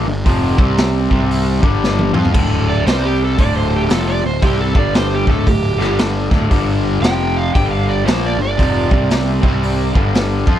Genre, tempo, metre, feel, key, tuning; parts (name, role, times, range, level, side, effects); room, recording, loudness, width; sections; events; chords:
blues rock power trio and southern rock; 115 BPM; 4/4; swing 62% on 8ths; A4 = 440 Hz
raw garage guitar; riff; 0.0-10.6 s; D2 to F4; -19 LUFS; left 1 dB; overdrive
fuzz picked electric bass; bass; 0.0-10.6 s; D1 to F2; -19 LUFS; equal; overdrive
raw garage drum kit; drums; 0.3-10.6 s; crash cymbal, hi-hat, kick drum, snare drum, toms; -17 LUFS; equal
overdriven slide guitar; melody; 2.7-9.9 s; G4 to G5; -22 LUFS; right 3 dB
small room reverb; -13 LUFS; side -11 dB against mid
0.0-2.3 A section; 2.3-10.6 B section
drum fill 1.8-2.3; electric slide guitar solo 2.3-10.6
0.0 G5; 0.5 C5; 1.6 G5; 2.3 D5; 2.9 C5; 3.4 Dm; 4.7 G5; 5.2 D5; 5.7 G5; 6.2 D5; 6.5 G5; 7.0 F5; 7.5 G5; 8.8 C5; 9.9 G5